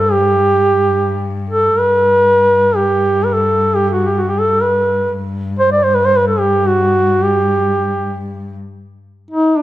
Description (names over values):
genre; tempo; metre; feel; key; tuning
Arabic maqam ensemble; 108 BPM; 3/4; straight; G maqam suznak; A4 = 444 Hz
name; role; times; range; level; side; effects
mellow duduk; melody; 0.0-9.6 s; D4 to D5; -12 LUFS; right 1 dB; none
warm cello; drone; 0.0-8.5 s; G2; -20 LUFS; left 2 dB; none
room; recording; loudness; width
moderate recital hall reverb, RT60 1.7 s; close, detailed microphones; -12 LUFS; side -14 dB against mid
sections
0.0-8.5 A section; 8.5-9.6 B section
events
none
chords
none